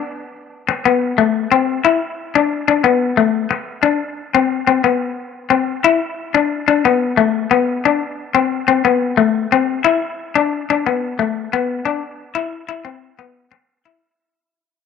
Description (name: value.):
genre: highlife.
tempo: 120 BPM (dotted quarters).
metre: 12/8.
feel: straight.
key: unclear.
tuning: A4 = 439 Hz.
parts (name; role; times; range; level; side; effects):
clean electric guitar; solo; 0.7-14.0 s; A3 to E4; -15 LUFS; left 7 dB; none.
room: wet spring reverb, RT60 1.9 s, digital ambience.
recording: none.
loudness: -15 LUFS.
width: side -6 dB against mid.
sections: 0.0-10.0 A section; 10.0-14.0 B section.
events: fade-out 10.0-14.0.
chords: none.